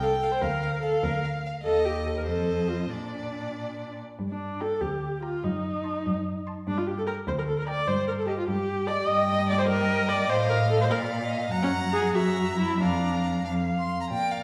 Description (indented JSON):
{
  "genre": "quick classical-period movement for string quartet",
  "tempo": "90-101 BPM (dotted quarters)",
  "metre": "6/8",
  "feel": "rubato",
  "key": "Bb major, G minor from 4.2 s, Bb major from 9.1 s",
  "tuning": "A4 = 440 Hz",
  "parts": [
    { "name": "warm violin", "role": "melody", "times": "0.0-14.4 s", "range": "D5 to C6", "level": "-37 LUFS", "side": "equal", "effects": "none" },
    { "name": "rich violin", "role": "second line", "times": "0.0-14.4 s", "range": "C5 to A5", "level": "-36 LUFS", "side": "equal", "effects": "none" },
    { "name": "warm viola", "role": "accompaniment", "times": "0.0-14.4 s", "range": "Db4 to Eb5", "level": "-30 LUFS", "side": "equal", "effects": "none" },
    { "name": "warm cello", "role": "bass", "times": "0.0-14.4 s", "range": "C2 to Bb2", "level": "-31 LUFS", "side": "equal", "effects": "none" }
  ],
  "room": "wet recital hall reverb, RT60 1.2 s",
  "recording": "heard from further back in the room",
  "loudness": "-27 LUFS",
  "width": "mono",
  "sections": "0.0-4.2 A section; 4.2-14.1 B section",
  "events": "none",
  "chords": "0.4 Bb/D; 1.6 Eb; 2.3 F7; 2.9 Bb; 4.2 Gm; 5.4 F#dim7; 6.7 Gm; 7.9 Gsus4; 9.1 Eb/G; 10.3 F7/A; 10.9 Bb; 11.5 Gb; 12.2 Gb7; 12.8 Bb/F; 13.5 F5"
}